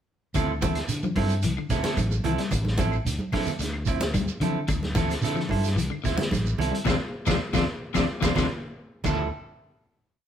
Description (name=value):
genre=afrobeat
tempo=110 BPM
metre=4/4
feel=straight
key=D minor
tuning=A4 = 439 Hz
part: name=fingered electric bass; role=bass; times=0.3-9.3 s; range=A1 to D3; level=-29 LUFS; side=left 1 dB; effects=none
part: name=vintage drum kit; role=drums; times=0.3-9.2 s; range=crash cymbal, hi-hat, kick drum, snare drum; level=-30 LUFS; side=left 1 dB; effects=none
part: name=congas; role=percussion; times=0.3-9.2 s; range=none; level=-31 LUFS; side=right 3 dB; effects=none
part: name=shekere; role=percussion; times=0.3-9.2 s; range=none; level=-34 LUFS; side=right 5 dB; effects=none
part: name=electric guitar at the edge of break-up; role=arpeggios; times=0.4-9.2 s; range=C3 to G3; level=-30 LUFS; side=left 7 dB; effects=none
part: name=clean electric guitar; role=stabs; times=0.4-9.3 s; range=F3 to A4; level=-30 LUFS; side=right 6 dB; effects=warbly pitch drift
part: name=claves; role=percussion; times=0.4-9.2 s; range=none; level=-40 LUFS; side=left 5 dB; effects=none
room=moderate stone room reverb, RT60 1.0 s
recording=band playing live in one room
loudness=-23 LUFS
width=side -9 dB against mid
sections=0.3-9.0 groove; 9.0-10.3 final chord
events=band accent 6.9-9.0; drum fill 8.2-9.0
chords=0.3 Dm9; 9.0 Dmadd9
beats=| 0.34 0.89 1.43 1.97 | 2.51 3.06 3.60 4.14 | 4.69 5.23 5.78 6.32 | 6.86 7.41 7.95 8.50 | 9.04